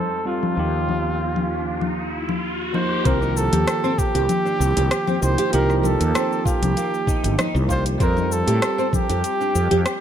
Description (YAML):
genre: organic downtempo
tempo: 97 BPM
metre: 4/4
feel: swing 53% on 16ths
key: C dorian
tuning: A4 = 443 Hz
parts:
  - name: trumpet with bucket mute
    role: melody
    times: 0.0-10.0 s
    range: F4 to C5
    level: -24 LUFS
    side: right 1 dB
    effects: digital delay
  - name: bell-like tine electric piano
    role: accompaniment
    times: 0.0-10.0 s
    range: Eb3 to C5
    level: -27 LUFS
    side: right 3 dB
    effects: sidechain pumping, ping-pong delay
  - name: woody fretless electric bass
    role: bass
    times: 0.0-9.8 s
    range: G1 to A2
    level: -23 LUFS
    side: equal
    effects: lush chorus, sidechain pumping
  - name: riser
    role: sound effects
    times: 0.2-3.1 s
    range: none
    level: -31 LUFS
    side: left 2 dB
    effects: none
  - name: deep house drum kit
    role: drums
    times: 0.4-10.0 s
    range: cabasa, congas, hi-hat, rim click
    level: -26 LUFS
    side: left 3 dB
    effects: overdrive
  - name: flamenco guitar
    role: arpeggios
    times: 3.1-9.8 s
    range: Bb3 to Bb4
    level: -26 LUFS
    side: right 1 dB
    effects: analog chorus, ping-pong delay
  - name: electronic kick drum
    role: drums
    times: 3.1-9.1 s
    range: none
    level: -22 LUFS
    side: equal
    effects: none
room: moderate plate reverb, RT60 2.8 s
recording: bright 1980s-style digital production, low-pass filter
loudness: -18 LUFS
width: side -9 dB against mid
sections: 0.0-3.1 A section; 3.1-10.0 B section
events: filter sweep 0.0-3.1; riser 0.2-3.1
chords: 0.0 F; 0.6 Ebsus2; 3.1 Cm; 8.0 F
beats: | 0.58 1.20 1.81 2.43 | 3.05 3.67 4.29 4.91 | 5.53 6.14 6.76 7.38 | 8.00 8.62 9.24 9.86